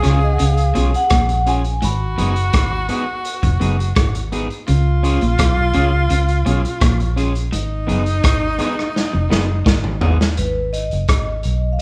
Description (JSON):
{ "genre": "roots reggae", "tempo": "84 BPM", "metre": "4/4", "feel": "straight", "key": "G# dorian", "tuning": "A4 = 440 Hz", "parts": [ { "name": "vibraphone with medium mallets", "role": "melody", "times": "0.0-2.9, 10.4-11.8 s", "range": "B4 to B5", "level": "-25 LUFS", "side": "equal", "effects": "none" }, { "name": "clear tenor saxophone", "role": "second line", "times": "0.0-10.0 s", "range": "D#4 to G#4", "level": "-25 LUFS", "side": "equal", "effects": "none" }, { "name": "electric guitar at the edge of break-up", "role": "accompaniment", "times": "0.0-10.2 s", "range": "B3 to G#4", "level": "-28 LUFS", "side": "equal", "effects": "none" }, { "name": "electric guitar at the edge of break-up", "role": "riff", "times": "0.0-9.9 s", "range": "E#2 to C#3", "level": "-28 LUFS", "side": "equal", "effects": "none" }, { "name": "vintage muted fingered electric bass", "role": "bass", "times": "0.0-11.8 s", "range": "E#1 to C#2", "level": "-21 LUFS", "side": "equal", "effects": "none" }, { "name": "crunchy breakbeat drum kit", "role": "drums", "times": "0.0-11.8 s", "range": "hi-hat, kick drum, rim click, snare drum, toms", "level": "-22 LUFS", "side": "equal", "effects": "vintage 12-bit sampler grit" } ], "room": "moderate large studio reverb, RT60 1.1 s", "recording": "band playing live in one room", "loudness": "-18 LUFS", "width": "mono", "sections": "0.0-10.4 A section; 10.4-11.8 B section", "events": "drum fill 8.9-10.4", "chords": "0.0 C#; 1.8 G#m; 4.7 C#; 7.5 G#m" }